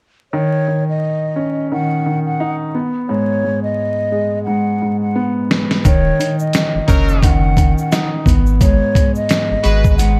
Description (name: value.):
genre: hip hop, boom-bap hip-hop.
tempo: 87 BPM.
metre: 4/4.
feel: swing 58% on 16ths.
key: unclear.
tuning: A4 = 440 Hz.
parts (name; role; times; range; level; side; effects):
mellow hollow concert flute; melody; 0.3-10.2 s; C#5 to F#5; -23 LUFS; equal; high-pass filter, low-pass filter.
dark concert grand piano; accompaniment; 0.3-10.2 s; G#2 to D#4; -20 LUFS; equal; cassette tape, high-pass filter, low-pass filter.
dusty soul sampler-style drum kit; drums; 5.5-10.2 s; hi-hat, kick drum, snare drum; -17 LUFS; equal; none.
egg shaker; percussion; 5.8-10.2 s; none; -39 LUFS; equal; none.
soft dub sub bass; bass; 5.9-10.2 s; D#1 to G#1; -18 LUFS; equal; none.
clear trumpet section; stabs; 6.9-9.9 s; F#3 to B4; -26 LUFS; equal; high-pass filter, low-pass filter, delay.
room: small room ambience.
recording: dark, warm production, vinyl crackle.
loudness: -16 LUFS.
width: mono.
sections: 0.3-5.8 A section; 5.8-10.2 B section.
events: drum fill 4.5-5.8.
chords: 0.3 D#m7; 2.7 G#m; 5.8 D#m7; 8.3 G#m.